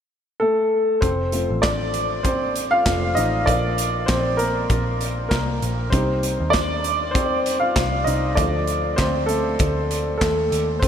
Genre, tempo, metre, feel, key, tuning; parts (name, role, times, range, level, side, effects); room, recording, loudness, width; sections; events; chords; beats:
piano-driven pop; 98 BPM; 4/4; swing 56% on 16ths; F mixolydian; A4 = 440 Hz
warm upright piano; accompaniment; 0.4-10.9 s; F3 to F5; -20 LUFS; equal
vintage muted picked electric bass; bass; 1.0-10.9 s; F1 to Eb2; -26 LUFS; equal
modern studio drum kit; drums; 1.0-10.9 s; handclaps, hi-hat, kick drum, snare drum; -25 LUFS; equal
wet huge ambient reverb, RT60 7.8 s; dreamy mix soaked in reverb; -18 LUFS; side -8 dB against mid
0.0-1.0 A section; 1.0-10.9 B section
upright piano solo 1.0-10.9
0.0 N.C.; 1.0 F; 3.5 Bb; 5.9 Cm; 8.4 Dm
0.41 | 1.02 1.63 2.25 2.86 | 3.47 4.08 4.70 5.31 | 5.92 6.54 7.15 7.76 | 8.37 8.99 9.60 10.21 | 10.82